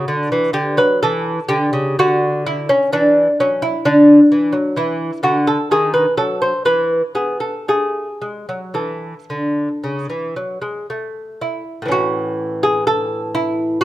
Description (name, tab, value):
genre	classical, baroque-style dance for lute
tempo	55-67 BPM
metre	4/4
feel	rubato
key	D major, A major from 3.9 s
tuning	A4 = 440 Hz
part	lute	solo	0.0-13.8 s	A2 to B#4	-15 LUFS	equal	none
room	light reverb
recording	close, detailed microphones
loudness	-14 LUFS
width	side -15 dB against mid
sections	0.0-11.9 A section; 11.9-13.8 B section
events	none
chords	0.1 Dadd9; 5.7 D#dim7; 6.7 E5; 7.7 A5; 11.9 A